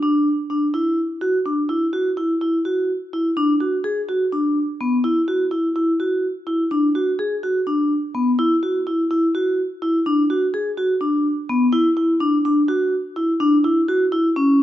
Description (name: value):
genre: contemporary instrumental, chamber music in an uneven meter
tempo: 251 BPM (eighths)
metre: 7/8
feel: straight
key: unclear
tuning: A4 = 442 Hz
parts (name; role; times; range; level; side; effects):
- vibraphone with medium mallets; solo; 0.0-14.6 s; B3 to G#4; -17 LUFS; equal; none
room: moderate recital hall reverb, RT60 1.4 s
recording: nothing above 7.8 kHz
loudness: -18 LUFS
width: side -12 dB against mid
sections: 0.0-1.7 A section; 1.7-14.6 B section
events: none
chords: none